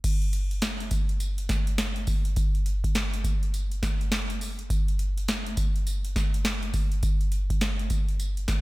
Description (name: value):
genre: R&B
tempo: 103 BPM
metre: 4/4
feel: swing 62% on 16ths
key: none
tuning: none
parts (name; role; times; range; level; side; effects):
- booming analog drum machine; drums; 0.0-8.6 s; crash cymbal, hi-hat, kick drum, snare drum, tambourine; -25 LUFS; equal; none
room: little or no reverb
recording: none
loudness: -25 LUFS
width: side -20 dB against mid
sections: 0.0-8.6 A section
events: none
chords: none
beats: | 0.04 0.62 1.21 1.79 | 2.37 2.95 3.54 4.12 | 4.70 5.28 5.87 6.45 | 7.03 7.61 8.20